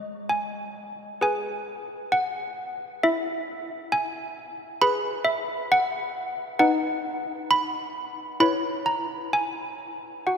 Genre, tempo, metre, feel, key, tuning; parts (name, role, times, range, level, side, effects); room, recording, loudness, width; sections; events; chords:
classical, tune for handbells; 66 BPM; 4/4; straight; A4 = 441 Hz
malleted handbells; solo; 0.0-10.4 s; G#3 to B5; -24 LUFS; equal
wet cathedral reverb, RT60 5.0 s; -24 LUFS; side -7 dB against mid
0.0-10.4 A section
0.0 G#m; 3.0 E; 6.6 B/D#; 8.4 C#m7/E